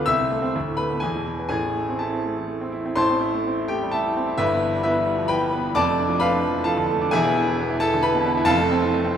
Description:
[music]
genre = classical, virtuoso piano study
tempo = 119-134 BPM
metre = 3/4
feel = rubato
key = A minor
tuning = A4 = 440 Hz
[part]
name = bright grand piano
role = solo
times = 0.0-9.2 s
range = E1 to E6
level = -20 LUFS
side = equal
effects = none
[sound]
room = wet concert hall reverb, RT60 2.3 s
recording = none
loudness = -20 LUFS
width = side -8 dB against mid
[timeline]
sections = 0.0-3.0 A section; 3.0-9.2 B section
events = none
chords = 0.1 Am/C; 0.5 Asus24/D; 1.0 E; 1.5 Am; 4.4 Em/G; 5.8 Dm/F; 7.1 E; 8.5 Fmaj7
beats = | 0.07 0.55 1.02 | 1.51 2.01 2.50 | 2.99 3.46 3.93 | 4.40 4.85 5.31 | 5.76 6.22 6.68 | 7.13 7.58 8.03 | 8.48 8.93

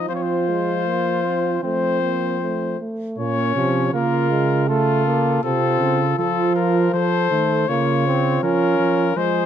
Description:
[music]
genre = classical, imitative canzona for brass ensemble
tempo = 80 BPM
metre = 4/4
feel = straight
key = Bb minor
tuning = A4 = 440 Hz
[part]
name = warm trumpet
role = melody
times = 0.0-9.5 s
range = F4 to Db5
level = -22 LUFS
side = left 10 dB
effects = none
[part]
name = mellow flugelhorn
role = second line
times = 0.0-9.5 s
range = C4 to A4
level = -24 LUFS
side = right 4 dB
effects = none
[part]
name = mellow trombone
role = accompaniment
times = 0.0-9.5 s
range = F3 to Db4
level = -24 LUFS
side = right 1 dB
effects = none
[part]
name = mellow tuba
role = bass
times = 0.1-9.5 s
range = Bb2 to F3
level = -23 LUFS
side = right 3 dB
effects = none
[sound]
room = moderate stone room reverb, RT60 1.0 s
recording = close, detailed microphones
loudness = -17 LUFS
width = side -9 dB against mid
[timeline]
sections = 0.0-3.2 A section; 3.2-9.5 B section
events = none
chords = 0.1 Fsus4; 1.6 F; 3.2 Bbm; 4.7 F; 7.7 Bbm/Db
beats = | 0.09 0.86 1.64 2.41 | 3.18 3.94 4.69 5.44 | 6.19 6.94 7.69 8.43 | 9.17

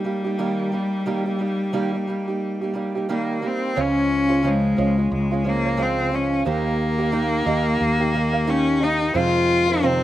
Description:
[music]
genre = acoustic pop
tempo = 89 BPM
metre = 4/4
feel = swing 60% on 16ths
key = unclear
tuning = A4 = 438 Hz
[part]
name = rich cello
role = melody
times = 0.0-10.0 s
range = G3 to F4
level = -21 LUFS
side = left 2 dB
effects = none
[part]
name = fingerpicked acoustic archtop guitar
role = accompaniment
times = 0.0-10.0 s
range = F2 to G4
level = -25 LUFS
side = right 4 dB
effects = none
[part]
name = open-back banjo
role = arpeggios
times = 3.8-9.8 s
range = Bb4 to G5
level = -32 LUFS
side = right 6 dB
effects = slapback echo
[part]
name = mellow fretless electric bass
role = bass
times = 3.8-10.0 s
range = Db2 to F2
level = -26 LUFS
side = equal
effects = none
[sound]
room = little or no reverb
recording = recorded outdoors, with no room sound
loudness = -19 LUFS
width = side -13 dB against mid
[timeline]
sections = 0.0-3.8 A section; 3.8-10.0 B section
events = none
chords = 0.0 Eb; 3.8 Db; 6.5 Eb; 9.1 Fm7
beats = 0.40 | 1.07 1.75 2.42 3.10 | 3.77 4.44 5.11 5.79 | 6.46 7.13 7.80 8.47 | 9.15 9.82

